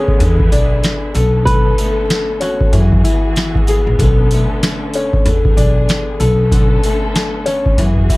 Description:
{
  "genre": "hip hop, boom-bap hip-hop",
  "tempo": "95 BPM",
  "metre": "4/4",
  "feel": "swing 61% on 16ths",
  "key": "B dorian",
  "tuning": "A4 = 439 Hz",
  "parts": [
    { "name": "flamenco guitar", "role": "melody", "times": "0.0-2.9 s", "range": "F#4 to B4", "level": "-22 LUFS", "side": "right 1 dB", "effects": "high-pass filter, low-pass filter, digital delay" },
    { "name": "warm upright piano", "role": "accompaniment", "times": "0.0-8.2 s", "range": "D3 to A4", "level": "-18 LUFS", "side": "left 2 dB", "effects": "cassette tape, high-pass filter, low-pass filter" },
    { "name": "warm studio string section", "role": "sustained chords", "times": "0.0-8.2 s", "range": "D3 to A4", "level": "-25 LUFS", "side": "left 1 dB", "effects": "high-pass filter, low-pass filter" },
    { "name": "booming analog drum machine", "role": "drums", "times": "0.1-8.2 s", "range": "hi-hat, kick drum, snare drum", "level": "-15 LUFS", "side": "equal", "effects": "none" },
    { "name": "upright bass", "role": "bass", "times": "0.2-8.1 s", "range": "A#1 to F#2", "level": "-15 LUFS", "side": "equal", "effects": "none" },
    { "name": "sleigh bells", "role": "percussion", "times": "0.2-8.2 s", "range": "none", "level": "-34 LUFS", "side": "right 2 dB", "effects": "none" }
  ],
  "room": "little or no reverb",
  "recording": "vinyl crackle",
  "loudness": "-11 LUFS",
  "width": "side -21 dB against mid",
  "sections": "0.0-8.2 A section",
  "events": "drum fill 7.8-8.2",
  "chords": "0.2 E7; 1.1 Bm9; 2.7 F#9sus4; 4.0 Bm9; 5.3 E7; 6.2 Bm9",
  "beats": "0.20 0.83 | 1.47 2.10 2.73 3.36 | 3.99 4.62 5.25 5.89 | 6.52 7.15 7.78"
}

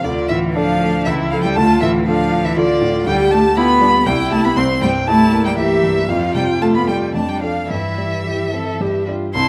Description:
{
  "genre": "quick classical-period movement for piano quintet",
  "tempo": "106-122 BPM",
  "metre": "3/4",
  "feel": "rubato",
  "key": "C major from 3.1 s",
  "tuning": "A4 = 440 Hz",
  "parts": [
    { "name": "warm violin", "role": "melody", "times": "0.0-9.5 s", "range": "D5 to C6", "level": "-24 LUFS", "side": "equal", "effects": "none" },
    { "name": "rich violin", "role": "second line", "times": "0.0-9.5 s", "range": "D5 to C6", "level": "-26 LUFS", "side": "equal", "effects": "none" },
    { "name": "warm cello", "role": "second line", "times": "0.0-9.4 s", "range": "D3 to C4", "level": "-22 LUFS", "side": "equal", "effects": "none" },
    { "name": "warm grand piano", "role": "accompaniment", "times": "0.0-9.5 s", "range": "C2 to A4", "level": "-23 LUFS", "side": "equal", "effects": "none" },
    { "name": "warm viola", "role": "accompaniment", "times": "0.0-9.5 s", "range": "C4 to A4", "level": "-23 LUFS", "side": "equal", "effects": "none" }
  ],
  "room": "moderate recital hall reverb, RT60 1.6 s",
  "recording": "close, detailed microphones",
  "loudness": "-16 LUFS",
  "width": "mono",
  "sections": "0.0-9.3 A section",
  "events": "none",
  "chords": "0.0 Dm; 1.1 A/C#; 1.6 Dm; 3.1 G7/D; 4.1 C; 4.6 C7; 6.1 F; 7.2 Dm/F; 7.7 C/G; 8.8 G5",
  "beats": "| 0.05 0.56 1.06 | 1.57 2.07 2.57 | 3.07 3.57 4.07 | 4.57 5.08 5.59 | 6.09 6.62 7.15 | 7.71 8.27 8.81 | 9.34"
}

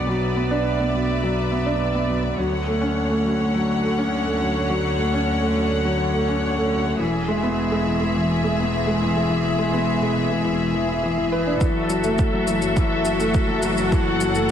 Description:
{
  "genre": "piano and strings electronica",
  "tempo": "104 BPM",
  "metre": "4/4",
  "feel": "straight",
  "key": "F# minor",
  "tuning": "A4 = 444 Hz",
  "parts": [
    { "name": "clear symphonic string section", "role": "sustained chords", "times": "0.0-14.5 s", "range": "D3 to F#5", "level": "-25 LUFS", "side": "left 1 dB", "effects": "sidechain pumping, low-pass filter" },
    { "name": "felt-muted upright piano", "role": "riff", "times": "0.0-14.5 s", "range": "E3 to B4", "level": "-22 LUFS", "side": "equal", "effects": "analog delay" },
    { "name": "clear chamber double bass section", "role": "bass", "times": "0.0-14.5 s", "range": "E1 to D2", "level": "-28 LUFS", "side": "right 1 dB", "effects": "sidechain pumping" },
    { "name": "electronic kick drum", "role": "drums", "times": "11.6-14.0 s", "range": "none", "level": "-21 LUFS", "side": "right 1 dB", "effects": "overdrive, small room ambience" },
    { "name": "shaker", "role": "drums", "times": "11.6-14.5 s", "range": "none", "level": "-35 LUFS", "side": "left 3 dB", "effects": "overdrive, low-pass filter on perc, small room ambience" }
  ],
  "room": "moderate plate reverb, RT60 2.2 s",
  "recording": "dreamy mix soaked in reverb, faint mains hum",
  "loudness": "-19 LUFS",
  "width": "side -9 dB against mid",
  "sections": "0.0-11.6 A section; 11.6-14.5 B section",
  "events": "fade-in on string section 0.0-11.6; build-up 11.6-14.5",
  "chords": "0.0 Bm; 2.4 Dmaj7; 7.0 E; 11.6 F#m7",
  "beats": "| 0.08 0.65 1.23 1.81 | 2.38 2.96 3.54 4.12 | 4.69 5.27 5.85 6.42 | 7.00 7.58 8.15 8.73 | 9.31 9.88 10.46 11.04 | 11.62 12.19 12.77 13.35 | 13.92 14.50"
}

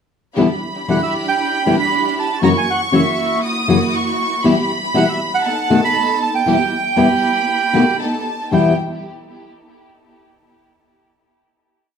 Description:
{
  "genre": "tango",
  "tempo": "118 BPM",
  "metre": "4/4",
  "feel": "rubato",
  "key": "E minor",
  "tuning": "A4 = 439 Hz",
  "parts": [
    { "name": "warm studio violin section", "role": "second line", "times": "0.4-8.8 s", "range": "G5 to D#6", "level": "-22 LUFS", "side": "left 1 dB", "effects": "none" },
    { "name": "nylon-string guitar", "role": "accompaniment", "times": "0.4-8.7 s", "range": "E2 to F#4", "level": "-16 LUFS", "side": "left 3 dB", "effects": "none" },
    { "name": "warm studio string section", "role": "stabs", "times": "0.4-8.7 s", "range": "A#3 to A4", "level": "-23 LUFS", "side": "right 2 dB", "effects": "tape echo" },
    { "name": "bandoneon", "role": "melody", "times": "0.9-8.8 s", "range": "E5 to B5", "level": "-19 LUFS", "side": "right 7 dB", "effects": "none" }
  ],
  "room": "wet large studio reverb, RT60 1.2 s",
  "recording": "none",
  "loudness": "-14 LUFS",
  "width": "side -7 dB against mid",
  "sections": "0.4-8.5 A section; 8.5-10.5 final chord",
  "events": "none",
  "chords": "0.4 Em7; 2.4 F#7; 4.4 Em/B; 5.5 B7; 6.5 Em; 8.0 B7; 8.5 Em",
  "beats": "| 0.37 0.89 1.40 1.91 | 2.42 2.93 3.43 3.94 | 4.44 4.95 5.45 5.96 | 6.47 6.98 7.49 8.00 | 8.52"
}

